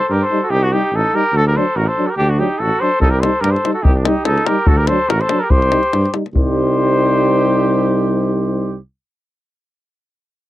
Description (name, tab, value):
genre	balkan folk, Balkan brass band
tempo	144 BPM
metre	2/4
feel	swing 54% on 16ths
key	C dorian sharp4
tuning	A4 = 440 Hz
part	clear flugelhorn	melody	0.0-8.8 s	F#4 to C5	-18 LUFS	equal	none
part	warm trumpet	second line	0.0-8.8 s	D4 to A4	-25 LUFS	right 4 dB	none
part	warm tuba	bass	0.1-8.8 s	A1 to G2	-18 LUFS	equal	none
part	clear euphonium	accompaniment	0.3-8.8 s	D4 to Eb4	-21 LUFS	left 6 dB	none
part	mellow euphonium	accompaniment	0.3-8.8 s	F#3 to G3	-21 LUFS	right 6 dB	none
part	davul	percussion	3.0-6.5 s	none	-16 LUFS	left 1 dB	none
room	little or no reverb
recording	dry, close 1970s-style studio recording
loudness	-13 LUFS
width	side -15 dB against mid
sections	0.0-6.3 A section; 6.3-8.0 B section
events	none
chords	0.0 Cm; 1.3 D; 3.0 Cm; 4.7 D; 5.5 Cm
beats	0.10 | 0.52 0.93 | 1.35 1.76 | 2.18 2.60 | 3.01 3.43 | 3.85 4.26 | 4.68 5.09 | 5.51 5.93 | 6.35 6.76 | 7.18 7.60